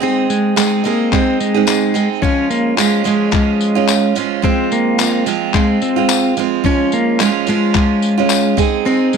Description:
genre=acoustic pop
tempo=109 BPM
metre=4/4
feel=swing 55% on 16ths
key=Db major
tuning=A4 = 440 Hz
part: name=clean lap steel guitar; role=melody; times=0.0-9.2 s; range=Ab3 to Db4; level=-16 LUFS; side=left 3 dB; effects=none
part: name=picked steel-string acoustic guitar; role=accompaniment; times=0.0-9.2 s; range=F3 to Ab4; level=-16 LUFS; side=right 12 dB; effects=none
part: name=lo-fi sampler-style drum kit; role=drums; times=0.3-9.2 s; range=handclaps, kick drum, tambourine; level=-20 LUFS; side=left 5 dB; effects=none
part: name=tambourine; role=percussion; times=0.6-8.4 s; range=none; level=-24 LUFS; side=left 18 dB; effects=none
room=light reverb, digital ambience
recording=1960s-style stereo with parts hard left and right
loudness=-12 LUFS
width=side -6 dB against mid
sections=0.0-9.2 A section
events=none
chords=0.0 Ab; 2.2 Bbm7/F (rootless); 4.4 Fm; 6.6 Db; 8.6 Ab

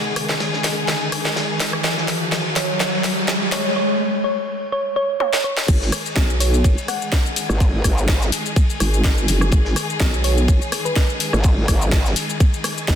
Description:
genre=bass house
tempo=125 BPM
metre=4/4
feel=swing 54% on 16ths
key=G# minor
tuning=A4 = 440 Hz
part: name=rich symphonic string section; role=sustained chords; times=0.0-13.0 s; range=D#3 to G#4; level=-27 LUFS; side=left 1 dB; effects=sidechain pumping, low-pass filter
part: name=riser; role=sound effects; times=0.0-3.8 s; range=none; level=-24 LUFS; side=equal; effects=none
part: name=cloth-damped thuddy drum kit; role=drums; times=0.2-13.0 s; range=ride cymbal, snare drum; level=-31 LUFS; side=left 2 dB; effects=sidechain pumping on cymbals, high-pass filter on cymbals, high-pass filter on snare, high-pass filter on room
part: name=garage drum kit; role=drums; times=0.2-13.0 s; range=crash cymbal, hi-hat, rim click, shaker, snare drum, toms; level=-23 LUFS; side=left 1 dB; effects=high-pass filter on perc, soft clipping on snare, high-pass filter on snare, high-pass filter on hats, high-pass filter on toms, high-pass filter on cymbals
part: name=thumb-piano-like synth pluck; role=melody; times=2.6-11.0 s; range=B4 to F#5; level=-25 LUFS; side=right 1 dB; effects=chorus, tape echo
part: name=vowel-sweep wobble bass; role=bass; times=5.7-13.0 s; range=F#1 to B1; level=-19 LUFS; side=equal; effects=chorus, overdrive, sidechain pumping
part: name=electronic kick drum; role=drums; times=5.7-13.0 s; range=none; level=-17 LUFS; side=equal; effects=none
part: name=growl bass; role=bass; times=7.5-8.3, 11.3-12.1 s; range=G#1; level=-19 LUFS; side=equal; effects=chorus, sidechain pumping
room=light reverb, digital ambience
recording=dense, heavily limited modern master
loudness=-17 LUFS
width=side -9 dB against mid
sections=0.0-5.7 A section; 5.7-13.0 B section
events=build-up 0.0-5.7; drum fill 0.0-3.8, 5.2-5.7; riser 0.0-3.8; filter sweep on string section 0.0-5.7; drop 5.7-13.0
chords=0.0 G#5

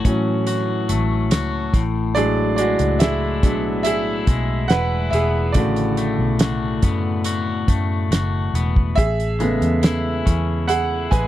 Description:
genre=pop ballad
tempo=71 BPM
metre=4/4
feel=straight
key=A major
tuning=A4 = 441 Hz
part: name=clear concert grand piano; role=accompaniment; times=0.0-11.3 s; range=C#3 to G#5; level=-22 LUFS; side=right 2 dB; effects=none
part: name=electric guitar at the edge of break-up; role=arpeggios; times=0.0-11.3 s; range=A2 to F#4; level=-25 LUFS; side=left 6 dB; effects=none
part: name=vintage muted fingered electric bass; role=bass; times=0.1-11.3 s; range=E1 to A2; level=-23 LUFS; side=equal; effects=none
part: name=damped 70s drum kit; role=drums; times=0.1-11.3 s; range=hi-hat, kick drum, snare drum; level=-18 LUFS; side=equal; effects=none
room=little or no reverb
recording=dry, close 1970s-style studio recording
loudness=-17 LUFS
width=side -13 dB against mid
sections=0.0-11.3 A section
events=grand piano solo 0.0-11.3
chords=0.0 A6; 1.7 E7/A; 9.0 Amaj7

